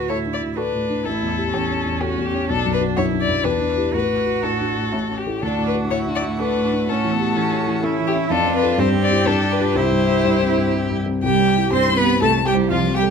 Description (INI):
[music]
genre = quick classical-period movement for piano quintet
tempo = 124 BPM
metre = 3/4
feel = straight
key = D major, C major from 8.3 s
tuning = A4 = 440 Hz
[part]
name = rich violin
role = melody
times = 0.0-13.0 s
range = F#4 to C6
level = -22 LUFS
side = left 8 dB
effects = none
[part]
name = rich cello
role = second line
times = 0.0-13.1 s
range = F3 to F#4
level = -24 LUFS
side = right 10 dB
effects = none
[part]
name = dark baby grand piano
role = accompaniment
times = 0.0-13.1 s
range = A1 to C5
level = -22 LUFS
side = left 2 dB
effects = none
[part]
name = rich violin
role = second line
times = 0.1-13.1 s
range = E4 to C5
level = -27 LUFS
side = left 2 dB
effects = none
[part]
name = rich viola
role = accompaniment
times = 0.1-13.1 s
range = A3 to C5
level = -27 LUFS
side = right 6 dB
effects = none
[sound]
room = light reverb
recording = close, detailed microphones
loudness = -17 LUFS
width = side -6 dB against mid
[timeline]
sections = 0.0-11.2 A section; 11.2-13.1 B section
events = none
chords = 0.0 D; 1.1 A7; 2.5 Bm; 3.4 Em7; 3.9 D/A; 4.9 A; 5.4 D; 6.9 A7; 8.3 F; 8.8 C/G; 9.3 G7; 9.8 C; 12.2 Am/C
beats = 0.10 0.58 | 1.06 1.54 2.02 | 2.50 2.97 3.45 | 3.94 4.44 4.93 | 5.42 5.91 6.40 | 6.88 7.37 7.84 | 8.31 8.79 9.28 | 9.76 10.25 10.74 | 11.23 11.73 12.22 | 12.70